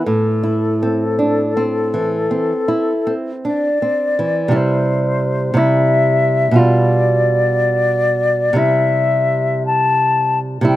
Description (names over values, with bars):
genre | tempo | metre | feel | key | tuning
romantic duo for flute and classical guitar | 50-61 BPM | 4/4 | rubato | A minor, C major from 4.6 s | A4 = 439 Hz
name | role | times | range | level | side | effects
mellow concert flute | melody | 0.0-10.8 s | A4 to A5 | -17 LUFS | left 3 dB | none
nylon-string guitar | accompaniment | 0.0-10.8 s | A2 to F4 | -16 LUFS | right 2 dB | none
room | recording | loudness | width
light reverb | recorded outdoors, with no room sound | -14 LUFS | side -14 dB against mid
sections
0.0-4.6 A section; 4.6-10.8 B section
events
none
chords
0.1 Am; 4.6 C; 6.6 G7/B; 8.6 C